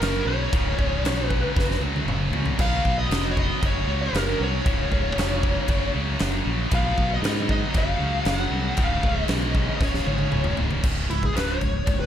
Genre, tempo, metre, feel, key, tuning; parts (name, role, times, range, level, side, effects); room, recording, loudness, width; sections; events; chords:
hard rock; 117 BPM; 4/4; straight; Db mixolydian; A4 = 440 Hz
smooth overdriven lead guitar; melody; 0.0-12.1 s; Fb4 to Gb5; -28 LUFS; left 1 dB
heavy high-gain guitar; riff; 0.0-12.1 s; Db2 to Cb4; -30 LUFS; equal; distortion
heavy high-gain guitar; riff; 0.0-10.8 s; Db2 to Cb4; -31 LUFS; equal; distortion
modern bright fingered electric bass; bass; 0.0-12.1 s; Db1 to Ab2; -27 LUFS; equal
huge arena drum kit; drums; 0.0-12.0 s; crash cymbal, kick drum, snare drum, toms; -25 LUFS; equal
light reverb, studio reverb; -21 LUFS; side -10 dB against mid
0.0-10.8 A section; 10.8-12.1 B section
drum fill 1.6-2.6, 9.8-10.8; lead electric guitar solo 10.8-12.1
0.0 Gb5; 0.5 Db5; 1.6 Gb5; 2.6 Cb5; 3.6 Gb5; 4.7 Db; 5.7 Gb; 6.7 Cb5; 7.7 Gb5; 8.8 Db5